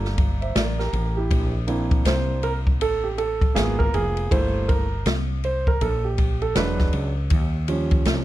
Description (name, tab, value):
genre	hip hop, jazz-hop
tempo	80 BPM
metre	4/4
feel	swing 63% on 16ths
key	unclear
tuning	A4 = 440 Hz
part	warm grand piano	accompaniment	0.0-8.2 s	F3 to E5	-25 LUFS	right 3 dB	none
part	woody fretless electric bass	bass	0.0-8.2 s	E1 to Eb2	-25 LUFS	equal	none
part	open jazz drum kit	drums	0.0-8.2 s	hi-hat, kick drum, ride cymbal, snare drum	-23 LUFS	equal	none
room	little or no reverb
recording	dark, warm production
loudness	-20 LUFS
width	side -14 dB against mid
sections	0.0-1.3 A section; 1.3-8.2 B section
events	grand piano solo 1.3-8.2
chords	0.0 Gm9; 1.3 Bbmaj9#11; 3.6 Abm69; 4.3 Gm69; 6.6 E9; 7.3 Eb7